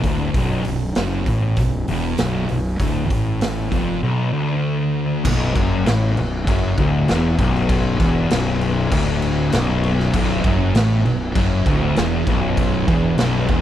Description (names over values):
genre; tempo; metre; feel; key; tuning
stoner and doom metal; 98 BPM; 4/4; straight; B minor; A4 = 438 Hz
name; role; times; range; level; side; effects
thick fuzz guitar; riff; 0.0-13.6 s; B1 to A2; -21 LUFS; left 5 dB; distortion
thick fuzz guitar; riff; 0.0-5.2, 10.1-13.6 s; B1 to A2; -24 LUFS; right 8 dB; distortion
fuzz fingered electric bass; bass; 0.0-13.6 s; B0 to A1; -24 LUFS; equal; overdrive
raw garage drum kit; drums; 0.0-13.6 s; crash cymbal, hi-hat, kick drum, snare drum; -22 LUFS; equal; none
fuzz guitar; riff; 5.2-13.6 s; B1 to A2; -24 LUFS; right 1 dB; distortion
room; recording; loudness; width
little or no reverb; none; -16 LUFS; side -11 dB against mid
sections
0.0-5.3 A section; 5.3-13.6 B section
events
none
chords
0.0 Bm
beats
| 0.35 0.96 1.58 2.19 | 2.81 3.42 4.04 4.65 | 5.26 5.87 6.49 7.10 | 7.71 8.32 8.93 9.54 | 10.15 10.76 11.37 11.97 | 12.58 13.19